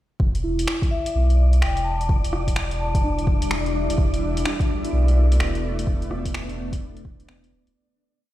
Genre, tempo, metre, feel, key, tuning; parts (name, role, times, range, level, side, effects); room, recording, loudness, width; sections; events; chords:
future garage; 127 BPM; 4/4; swing 63% on 16ths; E minor; A4 = 445 Hz
warm sub bass; bass; 0.2-7.8 s; D1 to B1; -21 LUFS; equal; tube saturation, sidechain pumping
electronic kick drum; drums; 0.2-7.2 s; -22 LUFS; equal; overdrive
wind-like tuned noise texture; texture; 0.7-7.8 s; D5; -34 LUFS; equal; built-in reverb
deep house drum kit; drums; 0.3-7.7 s; finger snaps, hi-hat, rim click; -30 LUFS; equal; overdrive
muted felt-like synth keys; accompaniment; 0.4-8.0 s; B3 to F#4; -31 LUFS; equal; chorus, sidechain pumping, low-pass filter, dub echo
vibraphone with medium hard mallets; melody; 0.9-3.3 s; E5 to A5; -30 LUFS; left 4 dB; dub echo
granular cloud pad; sustained chords; 2.7-7.7 s; G3 to E4; -30 LUFS; equal; built-in reverb, sidechain pumping
light reverb, digital ambience; played on a big sound system in a bare room, stone room reverb; -19 LUFS; side -14 dB against mid
0.2-7.8 groove
fade-out 5.2-7.8
0.2 Em7; 4.0 Asus2/E